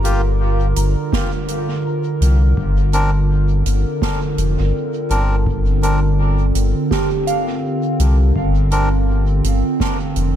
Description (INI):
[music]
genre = ambient dub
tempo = 83 BPM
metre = 4/4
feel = swing 60% on 16ths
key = G minor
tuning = A4 = 440 Hz
[part]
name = warbly tape-like pad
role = sustained chords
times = 0.0-10.4 s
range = D3 to Bb4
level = -21 LUFS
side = right 2 dB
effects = chorus, built-in reverb
[part]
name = soft synth bell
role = arpeggios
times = 0.0-10.4 s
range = G4 to D6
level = -27 LUFS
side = right 3 dB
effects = chorus, phaser, dub echo
[part]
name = melodica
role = stabs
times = 0.0-8.9 s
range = Bb3 to Bb4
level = -26 LUFS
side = left 1 dB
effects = dub echo
[part]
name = soft dub sub bass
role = bass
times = 0.0-10.4 s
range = F1 to C2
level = -15 LUFS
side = equal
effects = none
[part]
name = soft-mallet drum kit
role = drums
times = 0.0-10.3 s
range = hi-hat, snare drum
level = -27 LUFS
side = right 6 dB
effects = dub echo
[part]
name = electronic kick drum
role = drums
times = 1.1-10.0 s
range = none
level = -24 LUFS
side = equal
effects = none
[sound]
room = studio ambience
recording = echo-heavy mix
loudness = -15 LUFS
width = side -10 dB against mid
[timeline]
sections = 0.0-10.4 A section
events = none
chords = 0.0 Gm7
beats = 0.40 1.13 1.85 | 2.57 3.29 4.02 4.74 | 5.46 6.19 6.91 7.63 | 8.36 9.08 9.80